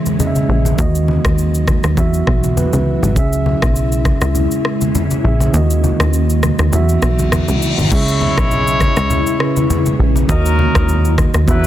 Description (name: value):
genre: afrobeats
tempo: 101 BPM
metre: 4/4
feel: swing 55% on 16ths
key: C# dorian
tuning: A4 = 439 Hz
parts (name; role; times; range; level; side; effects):
- mellow tine electric piano; accompaniment; 0.0-11.7 s; C#3 to E5; -19 LUFS; right 4 dB; none
- ethereal airy pad; sustained chords; 0.0-11.7 s; E3 to E4; -22 LUFS; left 2 dB; ensemble chorus, built-in reverb, phaser
- afro-pop drum kit; drums; 0.1-11.7 s; crash cymbal, kick drum, rim click, shaker; -18 LUFS; equal; soft clipping on snare
- congas; percussion; 0.1-11.6 s; none; -22 LUFS; left 2 dB; none
- plucky analog bass; bass; 0.5-11.7 s; G#1 to E2; -16 LUFS; equal; none
- reverse cymbal; sound effects; 7.1-7.9 s; none; -24 LUFS; left 4 dB; none
- clear horn section; second line; 7.9-11.7 s; F#3 to C#5; -20 LUFS; left 2 dB; none
room: little or no reverb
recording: dense, heavily limited modern master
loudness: -12 LUFS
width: side -12 dB against mid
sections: 0.0-7.9 A section; 7.9-11.7 B section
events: tine electric piano fill 2.3-3.2; kick muted 5.5-7.9; reverse cymbal 7.1-7.9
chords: 0.0 C#m; 0.8 D#m; 2.0 Esus2; 3.2 C#m; 5.5 D#m; 6.7 Esus2; 7.9 C#m; 10.3 D#m